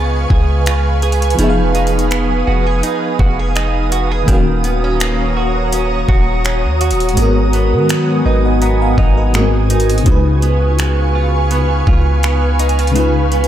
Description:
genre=contemporary R&B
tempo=83 BPM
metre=4/4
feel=swing 54% on 16ths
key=unclear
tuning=A4 = 440 Hz
part: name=FM electric piano with tremolo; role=accompaniment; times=0.0-13.5 s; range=Ab2 to Bb5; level=-19 LUFS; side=left 1 dB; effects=phaser
part: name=ethereal airy pad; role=sustained chords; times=0.0-13.5 s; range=Cb4 to Eb6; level=-19 LUFS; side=right 1 dB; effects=ensemble chorus, built-in reverb
part: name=direct-recorded clean electric guitar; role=arpeggios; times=0.0-13.5 s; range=Ab2 to Ab4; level=-22 LUFS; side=right 5 dB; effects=analog chorus, diffuse ambient delay
part: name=long sustained 808-style bass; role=bass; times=0.0-13.5 s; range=Eb1 to Eb3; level=-16 LUFS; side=equal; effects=none
part: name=smooth R&B drum kit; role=drums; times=0.3-13.5 s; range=finger snaps, hi-hat, kick drum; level=-18 LUFS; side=equal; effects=none
room=moderate plate reverb, RT60 1.9 s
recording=dreamy mix soaked in reverb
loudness=-12 LUFS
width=side -11 dB against mid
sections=0.0-13.5 A section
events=none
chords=0.0 Db7; 1.4 Fm7b5; 4.3 Ebm7; 7.2 Abm7; 9.3 Ab7; 10.1 Db7

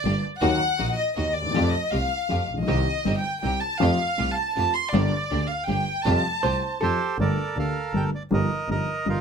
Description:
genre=tango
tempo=160 BPM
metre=3/4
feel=rubato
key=unclear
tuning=A4 = 442 Hz
part: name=dark chamber violin section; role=second line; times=0.0-6.8 s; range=D5 to C6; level=-26 LUFS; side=right 1 dB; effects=none
part: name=bright chamber string section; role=stabs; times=0.0-7.0 s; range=A3 to G4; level=-33 LUFS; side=left 1 dB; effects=none
part: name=clear double bass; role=bass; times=0.0-9.2 s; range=G1 to F2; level=-27 LUFS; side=right 2 dB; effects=none
part: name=dark baby grand piano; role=accompaniment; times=0.1-9.2 s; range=G1 to G4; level=-27 LUFS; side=left 2 dB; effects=none
part: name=vintage hollow-body jazz guitar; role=second line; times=6.4-7.2 s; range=A4 to C5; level=-28 LUFS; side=right 1 dB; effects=none
part: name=bandoneon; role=melody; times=6.8-9.2 s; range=Eb4 to G5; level=-27 LUFS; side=right 4 dB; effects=none
room=little or no reverb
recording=close, detailed microphones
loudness=-22 LUFS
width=side -6 dB against mid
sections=0.0-7.2 A section; 7.2-9.2 B section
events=violin section solo 0.0-7.2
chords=0.4 Ebm; 1.5 Fadd9; 2.7 Cm; 3.8 Fadd9; 4.9 Gm; 6.1 Fadd9; 7.2 Gmadd9; 8.3 Ebadd9/G

